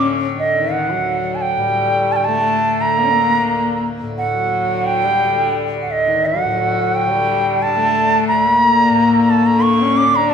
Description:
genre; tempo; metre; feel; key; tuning
indian classical, Hindustani; 88 BPM; 4/4; straight; D raga bhairav; A4 = 441 Hz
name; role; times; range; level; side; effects
bright bansuri; melody; 0.0-10.3 s; Eb5 to D6; -16 LUFS; right 2 dB; none
clear sarangi; second line; 0.0-10.3 s; Eb3 to D4; -19 LUFS; left 5 dB; none
tanpura; drone; 0.0-10.3 s; D2 to D3; -24 LUFS; left 2 dB; none
room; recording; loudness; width
wet recital hall reverb, RT60 1.6 s; minimal, uncompressed stereo recording; -14 LUFS; side -7 dB against mid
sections
0.0-10.3 A section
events
none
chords
none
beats
| 0.05 0.74 1.43 2.12 | 2.81 3.49 4.18 4.86 | 5.55 6.23 6.91 7.59 | 8.27 8.95 9.63 10.31

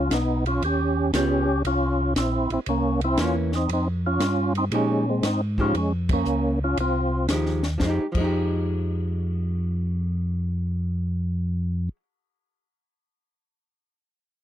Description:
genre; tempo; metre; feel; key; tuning
soul jazz organ trio; 117 BPM; 4/4; swing 67% on 8ths; F minor; A4 = 441 Hz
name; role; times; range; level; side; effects
percussive tonewheel organ; melody; 0.0-7.3 s; Ab3 to G4; -23 LUFS; right 1 dB; slow rotary speaker, overdrive, chorus vibrato
mellow tonewheel organ; bass; 0.0-11.9 s; Bb1 to Bb2; -25 LUFS; equal; slow rotary speaker
compact cocktail drum kit; drums; 0.1-8.2 s; crash cymbal, hi-hat, kick drum, ride cymbal, snare drum; -29 LUFS; left 1 dB; none
archtop guitar, miked and amplified; accompaniment; 1.1-12.0 s; E3 to G4; -27 LUFS; equal; none
room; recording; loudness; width
little or no reverb; dry, close 1970s-style studio recording; -22 LUFS; side -11 dB against mid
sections
0.0-7.8 A section; 7.8-11.9 B section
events
band accent 6.0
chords
0.0 Db7; 1.7 C7b9; 3.7 Fm9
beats
0.11 0.63 1.14 | 1.65 2.16 2.68 3.19 | 3.70 4.21 4.73 5.24 | 5.75 6.26 6.78 7.29 | 7.80 8.32 8.83 9.34 | 9.86 10.37 10.88 11.39

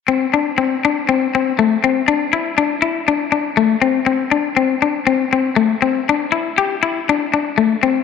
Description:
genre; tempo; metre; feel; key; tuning
highlife; 120 BPM; 4/4; straight; C major; A4 = 440 Hz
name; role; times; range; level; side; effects
clean electric guitar; accompaniment; 0.1-8.0 s; A3 to G4; -14 LUFS; left 7 dB; spring reverb
room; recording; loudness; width
moderate plate reverb, RT60 2.6 s; none; -14 LUFS; side -6 dB against mid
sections
0.1-8.0 A section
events
none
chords
none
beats
| 0.09 0.59 1.09 1.59 | 2.09 2.58 3.08 3.58 | 4.08 4.58 5.08 5.58 | 6.07 6.57 7.07 7.57

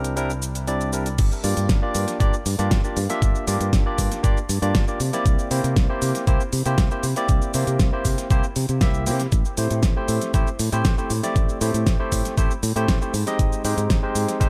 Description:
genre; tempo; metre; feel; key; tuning
nu-disco, nu disco; 118 BPM; 4/4; straight; G dorian; A4 = 441 Hz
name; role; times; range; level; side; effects
barky tine electric piano; accompaniment; 0.0-14.5 s; G3 to E5; -28 LUFS; equal; sidechain pumping, dub echo
fingered electric bass; bass; 0.0-14.5 s; G1 to C3; -27 LUFS; equal; sidechain pumping
pop drum kit; drums; 0.0-14.5 s; crash cymbal, hi-hat, shaker, snare drum; -31 LUFS; equal; small room ambience, dub echo
electronic kick drum; drums; 1.2-14.5 s; none; -23 LUFS; equal; small room ambience
room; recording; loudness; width
little or no reverb; echo-heavy mix; -22 LUFS; mono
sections
0.0-1.2 A section; 1.2-14.5 B section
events
filter sweep on tine electric piano 0.0-1.2; drop 1.2-14.5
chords
0.0 C9; 1.2 Gm7; 5.0 C7; 9.3 Am7; 13.1 Abmaj7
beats
0.17 0.68 | 1.19 1.70 2.21 2.71 | 3.22 3.73 4.24 4.75 | 5.26 5.76 6.27 6.78 | 7.29 7.80 8.31 8.81 | 9.32 9.83 10.34 10.85 | 11.36 11.87 12.37 12.88 | 13.39 13.90 14.41

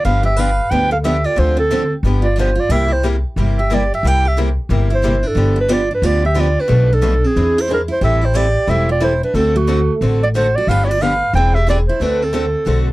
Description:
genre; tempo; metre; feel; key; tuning
acoustic string swing (jazz manouche); 181 BPM; 4/4; swing 61% on 8ths; G mixolydian; A4 = 443 Hz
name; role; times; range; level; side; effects
breathy clarinet; melody; 0.0-12.9 s; F#4 to G5; -18 LUFS; right 1 dB; none
picked steel-string acoustic guitar; second line; 0.0-12.9 s; A3 to B#4; -24 LUFS; right 3 dB; none
upright bass; bass; 0.0-12.9 s; E1 to E2; -17 LUFS; equal; none
picked steel-string acoustic guitar; accompaniment; 0.1-12.9 s; B2 to A4; -22 LUFS; left 3 dB; none
picked steel-string acoustic guitar; accompaniment; 0.1-12.9 s; B2 to B#4; -26 LUFS; right 5 dB; none
room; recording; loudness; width
light reverb; dark, warm production; -13 LUFS; side -18 dB against mid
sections
0.0-12.9 A section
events
none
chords
0.0 G7; 1.4 Dm7; 2.0 G7; 2.7 C7; 5.4 G7; 6.7 Bm7b5; 7.4 Eaug7; 8.0 Am7; 9.3 D7; 10.7 G7; 11.3 Eaug7; 12.0 D7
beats
| 0.05 0.38 0.72 1.05 | 1.38 1.71 2.04 2.38 | 2.71 3.04 3.37 3.70 | 4.04 4.37 4.70 5.03 | 5.36 5.70 6.03 6.36 | 6.69 7.02 7.36 7.69 | 8.02 8.35 8.68 9.02 | 9.35 9.68 10.01 10.34 | 10.68 11.01 11.34 11.67 | 12.01 12.34 12.67

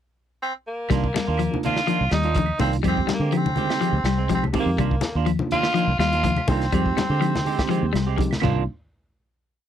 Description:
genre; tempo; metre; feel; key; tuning
afrobeat; 124 BPM; 4/4; swing 54% on 16ths; C minor; A4 = 439 Hz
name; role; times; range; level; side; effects
raspy tenor saxophone; melody; 0.4-8.2 s; Bb3 to F4; -26 LUFS; right 1 dB; none
electric guitar at the edge of break-up; arpeggios; 0.9-8.6 s; C3 to G3; -26 LUFS; left 9 dB; none
semi-hollow electric guitar; stabs; 0.9-8.6 s; Eb3 to G4; -28 LUFS; right 11 dB; none
fingered electric bass; bass; 0.9-8.7 s; C2 to D3; -24 LUFS; equal; none
crunchy breakbeat drum kit; drums; 0.9-8.6 s; crash cymbal, hi-hat, kick drum, snare drum; -28 LUFS; right 1 dB; none
claves; percussion; 0.9-8.5 s; none; -37 LUFS; right 27 dB; none
congas; percussion; 0.9-8.6 s; none; -29 LUFS; left 5 dB; none
tine electric piano; accompaniment; 1.5-8.7 s; Ab3 to G4; -30 LUFS; right 4 dB; overdrive, fast stereo tremolo
room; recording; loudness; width
little or no reverb; dry, close 1970s-style studio recording; -20 LUFS; side -10 dB against mid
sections
0.0-0.9 pickup bar; 0.9-8.7 groove; 8.7-9.7 final hit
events
none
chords
0.0 N.C.; 0.9 Cm11; 2.8 Fm9; 4.8 Cm11; 6.7 Fm9; 8.4 Cm11; 8.7 N.C.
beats
0.42 | 0.91 1.39 1.88 2.36 | 2.85 3.33 3.82 4.30 | 4.79 5.27 5.76 6.24 | 6.73 7.21 7.70 8.18

